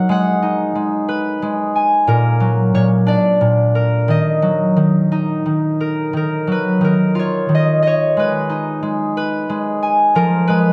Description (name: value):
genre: children's music, lullaby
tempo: 60 BPM (dotted quarters)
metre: 6/8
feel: rubato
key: Eb minor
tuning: A4 = 440 Hz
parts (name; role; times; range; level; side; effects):
- concert harp; solo; 0.0-10.7 s; Bb2 to Ab5; -16 LUFS; equal; none
room: little or no reverb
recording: close, detailed microphones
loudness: -16 LUFS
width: mono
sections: 0.0-6.1 A section; 6.1-10.7 B section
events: none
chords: 0.1 Abm; 2.1 Gb/Bb; 3.1 Bb; 4.1 Ebm; 6.1 Ebmadd9; 8.2 Abm; 10.2 Fdim